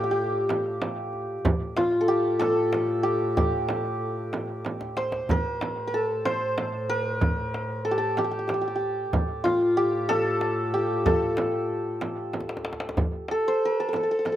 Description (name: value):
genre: Persian modal ensemble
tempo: 62 BPM (dotted quarters)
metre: 6/8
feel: straight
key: A dastgah shur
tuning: A4 = 440 Hz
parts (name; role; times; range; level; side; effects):
- santur; melody; 0.0-14.4 s; F4 to C5; -25 LUFS; equal; slapback echo
- warm double bass; drone; 0.0-13.0 s; A2; -35 LUFS; equal; none
- frame drum; percussion; 0.5-14.4 s; none; -30 LUFS; right 3 dB; none
- tombak; percussion; 0.5-14.4 s; none; -30 LUFS; equal; none
room: little or no reverb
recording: recorded outdoors, with no room sound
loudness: -24 LUFS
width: side -12 dB against mid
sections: 0.0-13.0 A section; 13.0-14.4 B section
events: drum fill 4.7-5.3, 12.3-13.0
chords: none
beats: 0.50 | 1.46 2.42 | 3.38 4.33 | 5.29 6.25 | 7.21 8.17 | 9.13 10.09 | 11.05 12.01 | 12.97 13.94